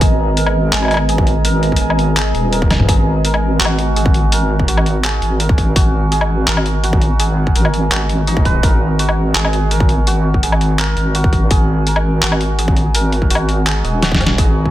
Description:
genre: half-time drum and bass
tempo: 167 BPM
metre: 4/4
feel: half-time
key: G# minor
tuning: A4 = 445 Hz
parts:
  - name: deep dark ambient pad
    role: sustained chords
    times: 0.0-14.4 s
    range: G#3 to A#5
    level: -24 LUFS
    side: right 1 dB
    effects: chorus, built-in reverb, sidechain pumping
  - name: santur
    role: arpeggios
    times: 0.0-14.7 s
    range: D#4 to G#5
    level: -21 LUFS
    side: right 2 dB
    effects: vintage 12-bit sampler grit, tape echo
  - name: deep soft wobble bass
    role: bass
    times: 0.0-14.7 s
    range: D#1 to G#1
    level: -16 LUFS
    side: equal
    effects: chorus
  - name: boom bap sampler-style drum kit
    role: drums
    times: 0.0-14.5 s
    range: handclaps, hi-hat, snare drum, toms, woodblock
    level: -19 LUFS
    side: left 1 dB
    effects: none
  - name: electronic kick drum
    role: drums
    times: 0.0-14.7 s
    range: none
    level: -15 LUFS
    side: equal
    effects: distortion
room: digital ambience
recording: none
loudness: -12 LUFS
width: side -14 dB against mid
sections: 0.0-14.4 A section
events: drop 0.0-14.4; drum fill 2.7, 14.0-14.4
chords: 0.0 G#madd9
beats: | 0.01 0.37 0.73 1.09 | 1.45 1.81 2.17 2.53 | 2.88 3.24 3.60 3.96 | 4.32 4.68 5.04 5.40 | 5.76 6.12 6.48 6.84 | 7.20 7.56 7.92 8.27 | 8.63 8.99 9.35 9.71 | 10.07 10.43 10.79 11.15 | 11.51 11.87 12.23 12.59 | 12.95 13.30 13.66 14.02 | 14.38

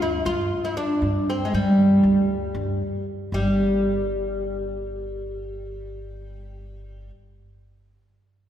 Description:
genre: Turkish makam ensemble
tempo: 234 BPM (eighths)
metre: 9/8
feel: straight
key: G makam hicaz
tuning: A4 = 440 Hz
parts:
  - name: oud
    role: melody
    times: 0.0-7.1 s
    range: G3 to F4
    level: -22 LUFS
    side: equal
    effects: none
  - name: upright bass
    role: bass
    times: 0.0-7.1 s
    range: G1 to G2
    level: -30 LUFS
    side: equal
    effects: none
room: wet concert hall reverb, RT60 2.4 s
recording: recorded in a church or concert hall, lossy compression artefacts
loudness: -20 LUFS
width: side -10 dB against mid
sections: 0.0-3.3 A section; 3.3-5.6 B section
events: none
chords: none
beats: 0.01 0.26 0.52 0.77 | 1.03 1.29 1.54 1.80 2.05 2.31 2.57 2.82 3.08 | 3.33 3.59 3.85 4.10 4.36 4.61 4.87 5.12 5.38

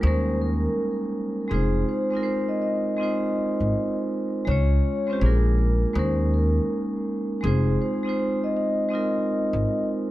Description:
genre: lo-fi hip hop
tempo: 81 BPM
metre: 4/4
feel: swing 66% on 16ths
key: F minor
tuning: A4 = 439 Hz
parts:
  - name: vibraphone with soft mallets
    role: melody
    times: 0.0-9.9 s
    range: Ab4 to Eb5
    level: -28 LUFS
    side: left 2 dB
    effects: low-pass filter, tape echo
  - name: vibraphone with medium hard mallets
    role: accompaniment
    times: 0.0-10.1 s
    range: G3 to Db5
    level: -25 LUFS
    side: right 2 dB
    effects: low-pass filter
  - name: upright bass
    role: bass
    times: 0.0-9.6 s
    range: F1 to Eb2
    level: -22 LUFS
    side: equal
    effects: none
room: light reverb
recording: dark, warm production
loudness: -22 LUFS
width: side -16 dB against mid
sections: 0.0-10.1 A section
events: none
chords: 0.0 Eb7sus4; 1.5 Fm7; 4.5 Dbmaj7; 5.2 Bb7; 6.0 Eb7sus4; 7.4 Fm7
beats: 0.03 0.77 | 1.51 2.25 2.99 3.73 | 4.47 5.21 5.96 6.70 | 7.44 8.18 8.92 9.66

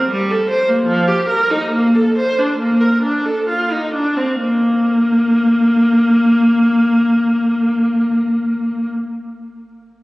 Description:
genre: classical, baroque-style suite movement for unaccompanied viola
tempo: 63-83 BPM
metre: 3/4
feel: rubato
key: Bb major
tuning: A4 = 440 Hz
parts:
  - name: rich viola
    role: solo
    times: 0.0-8.9 s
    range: F3 to C5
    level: -13 LUFS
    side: equal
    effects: none
room: wet church reverb, RT60 3.4 s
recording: recorded on a phone in the room, studio reverb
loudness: -13 LUFS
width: side -20 dB against mid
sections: 0.0-4.4 A section; 4.4-9.9 B section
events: slowing down 0.0-4.4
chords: none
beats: 0.11 0.86 | 1.70 2.58 3.47 | 4.39 5.30 6.21 | 7.13 8.05

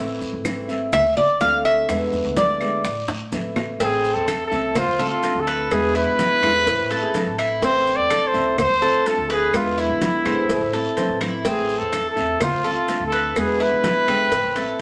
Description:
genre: latin, Cuban son and guajira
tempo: 126 BPM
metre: 4/4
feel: straight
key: A harmonic minor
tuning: A4 = 440 Hz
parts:
  - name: nylon-string guitar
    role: accompaniment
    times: 0.0-14.8 s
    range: B2 to F4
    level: -29 LUFS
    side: equal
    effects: none
  - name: upright bass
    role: bass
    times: 0.0-14.7 s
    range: G#1 to D3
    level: -36 LUFS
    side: equal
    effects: none
  - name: bongos and cowbell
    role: percussion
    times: 0.2-14.8 s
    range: none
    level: -32 LUFS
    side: equal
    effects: none
  - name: congas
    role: percussion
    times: 0.2-14.8 s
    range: none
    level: -33 LUFS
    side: equal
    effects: none
  - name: maracas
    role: percussion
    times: 0.2-14.8 s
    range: none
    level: -45 LUFS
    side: equal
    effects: none
  - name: claves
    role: percussion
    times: 0.4-14.3 s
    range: none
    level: -36 LUFS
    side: equal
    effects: none
  - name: guiro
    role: percussion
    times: 0.5-14.8 s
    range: none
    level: -40 LUFS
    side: equal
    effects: none
  - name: Cuban tres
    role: arpeggios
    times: 0.9-14.8 s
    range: C4 to F5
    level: -26 LUFS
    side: equal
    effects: none
  - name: breathy trumpet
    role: melody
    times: 3.8-14.8 s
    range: E4 to D5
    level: -23 LUFS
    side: equal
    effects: none
  - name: flamenco guitar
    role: second line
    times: 6.4-11.3 s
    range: E4 to C5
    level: -32 LUFS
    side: equal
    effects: none
room: moderate studio reverb, RT60 0.9 s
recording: none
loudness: -21 LUFS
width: mono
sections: 0.0-3.8 A section; 3.8-14.8 B section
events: Cuban tres solo 0.0-3.8; drum fill 3.1-3.8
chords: 0.0 Am; 0.9 Dm7; 1.9 E7; 2.8 Am; 4.8 Dm7; 5.7 E7; 6.7 Am; 8.6 Dm7; 9.5 E7; 10.5 Am; 12.4 Dm7; 13.4 E7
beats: 0.45 0.93 1.41 | 1.89 2.36 2.84 3.32 | 3.80 4.28 4.76 5.23 | 5.71 6.19 6.67 7.15 | 7.62 8.10 8.58 9.06 | 9.54 10.02 10.49 10.97 | 11.45 11.93 12.41 12.88 | 13.36 13.84 14.32 14.80

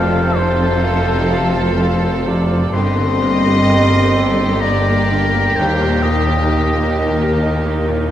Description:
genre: cinematic, emotional film score for orchestra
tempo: 64 BPM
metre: 3/4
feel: rubato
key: Eb lydian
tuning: A4 = 440 Hz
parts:
  - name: rich studio violin section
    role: melody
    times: 0.0-8.1 s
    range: G4 to A4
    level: -25 LUFS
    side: right 1 dB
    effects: none
  - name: dark studio violin section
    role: second line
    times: 0.0-7.9 s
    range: Eb4 to Eb5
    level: -25 LUFS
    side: right 2 dB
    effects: none
  - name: warm clarinet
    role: second line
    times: 0.0-8.1 s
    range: F4 to D5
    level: -26 LUFS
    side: right 2 dB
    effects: none
  - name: warm oboe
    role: second line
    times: 0.0-7.9 s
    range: C5 to C6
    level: -21 LUFS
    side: left 3 dB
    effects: none
  - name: bright baby grand piano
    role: accompaniment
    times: 0.0-8.1 s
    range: Eb2 to F5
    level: -22 LUFS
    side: right 2 dB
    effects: none
  - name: rich studio viola section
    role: accompaniment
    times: 0.0-8.1 s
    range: D3 to F4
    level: -25 LUFS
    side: left 1 dB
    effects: none
  - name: mellow French horn section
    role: sustained chords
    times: 0.0-7.9 s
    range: C3 to C4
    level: -23 LUFS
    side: equal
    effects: none
  - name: rich studio cello section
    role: bass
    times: 0.0-8.1 s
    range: Eb2 to G2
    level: -20 LUFS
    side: equal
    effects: none
  - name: rich studio double bass section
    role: bass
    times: 0.0-8.1 s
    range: F1 to Eb2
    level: -20 LUFS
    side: equal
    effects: none
room: wet cathedral reverb, RT60 5.3 s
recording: in a vast, echoing space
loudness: -13 LUFS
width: side -11 dB against mid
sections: 0.0-8.1 A section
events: none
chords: 0.0 F; 2.7 Gm; 5.6 Eb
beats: 0.85 1.80 | 2.74 3.68 4.62 | 5.57 6.49 7.41

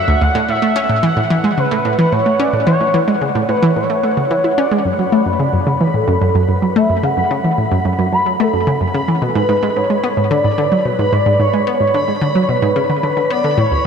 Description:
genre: ambient, sequencer-driven space music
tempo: 110 BPM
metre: 4/4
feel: straight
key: unclear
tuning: A4 = 440 Hz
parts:
  - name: expressive portamento lead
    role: melody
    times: 0.0-13.9 s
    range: A4 to B5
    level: -17 LUFS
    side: equal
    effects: analog chorus, tape echo
  - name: bubbling stepped-filter texture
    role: texture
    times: 0.0-13.9 s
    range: F#5 to B5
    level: -25 LUFS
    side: left 2 dB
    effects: chorus, built-in reverb
  - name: analog pluck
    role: riff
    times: 0.1-13.8 s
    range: D2 to E4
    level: -15 LUFS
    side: equal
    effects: chorus, tape echo
room: wet huge ambient reverb, RT60 8.4 s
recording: none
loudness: -13 LUFS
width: side -6 dB against mid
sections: 0.0-13.9 A section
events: none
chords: 0.5 A; 4.9 F#m; 9.2 G#dim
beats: | 0.49 1.03 1.58 2.12 | 2.67 3.21 3.76 4.31 | 4.85 5.40 5.94 6.49 | 7.03 7.58 8.12 8.67 | 9.21 9.76 10.31 10.85 | 11.40 11.94 12.49 13.03 | 13.58

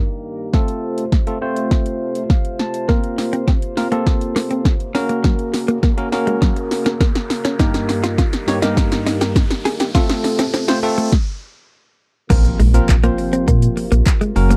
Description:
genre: dance-pop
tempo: 102 BPM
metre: 4/4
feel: straight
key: Bb harmonic minor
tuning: A4 = 440 Hz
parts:
  - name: dark French horn section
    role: sustained chords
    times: 0.0-14.6 s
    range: G2 to C5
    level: -30 LUFS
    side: equal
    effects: sidechain pumping, low-pass filter
  - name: bell-like tine electric piano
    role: accompaniment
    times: 0.5-14.6 s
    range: G2 to A5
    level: -23 LUFS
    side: equal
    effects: sidechain pumping, low-pass filter
  - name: deep house drum kit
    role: drums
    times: 0.5-14.6 s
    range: crash cymbal, handclaps, hi-hat, kick drum, shaker, snare drum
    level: -19 LUFS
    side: equal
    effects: overdrive
  - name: direct-recorded clean electric guitar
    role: riff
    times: 2.9-14.6 s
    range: Gb3 to Ab4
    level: -24 LUFS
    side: equal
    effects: lush chorus, low-pass filter
  - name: riser and impact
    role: sound effects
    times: 4.9-14.6 s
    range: none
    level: -33 LUFS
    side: equal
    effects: none
  - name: sub bass with octave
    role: bass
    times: 12.3-14.6 s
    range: Gb1 to Bb2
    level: -16 LUFS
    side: equal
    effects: sidechain pumping
room: little or no reverb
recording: dry, close 1970s-style studio recording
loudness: -18 LUFS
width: mono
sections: 0.0-12.3 A section; 12.3-14.6 B section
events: build-up 0.0-12.3; drum fill 0.0-11.1; filter sweep 0.0-12.3; tine electric piano fill 2.0-2.9; riser 4.9-12.3; stop 11.1-12.3; drop 12.3-14.6; impact 12.3-14.6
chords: 0.0 Eb/G; 0.5 F; 2.9 Bbsus2; 4.9 Gb; 7.6 Eb/G; 9.9 F; 12.3 Bbsus2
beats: | 0.54 1.12 1.71 2.30 | 2.89 3.48 4.07 4.65 | 5.24 5.83 6.42 7.01 | 7.59 8.18 8.77 9.36 | 9.95 10.54 11.12 11.71 | 12.30 12.89 13.48 14.07

